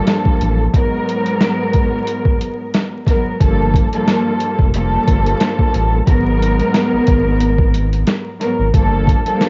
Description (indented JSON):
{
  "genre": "hip hop, boom-bap hip-hop",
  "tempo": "90 BPM",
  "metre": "4/4",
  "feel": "swing 55% on 16ths",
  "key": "unclear",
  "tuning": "A4 = 440 Hz",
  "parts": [
    { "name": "dark studio string section", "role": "accompaniment", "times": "0.0-9.5 s", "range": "G2 to Bb4", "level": "-19 LUFS", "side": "equal", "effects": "cassette tape, high-pass filter, low-pass filter" },
    { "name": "boom bap sampler-style drum kit", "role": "drums", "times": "0.1-9.5 s", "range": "hi-hat, kick drum, snare drum", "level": "-18 LUFS", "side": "equal", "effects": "cassette tape" },
    { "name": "sub bass with octave", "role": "bass", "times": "0.4-9.2 s", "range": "F1 to A1", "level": "-19 LUFS", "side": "equal", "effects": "none" }
  ],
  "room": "digital ambience",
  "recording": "home recording on cassette, vinyl crackle, nothing above 7.5 kHz",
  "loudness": "-16 LUFS",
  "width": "mono",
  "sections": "0.0-3.4 A section; 3.4-9.5 B section",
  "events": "none",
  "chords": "0.0 Gm9; 0.7 Abm9; 3.4 Gm9; 6.1 Abm9; 8.7 Gm9",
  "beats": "0.07 | 0.74 1.41 2.07 2.74 | 3.41 4.07 4.74 5.41 | 6.07 6.74 7.41 8.07 | 8.74 9.41"
}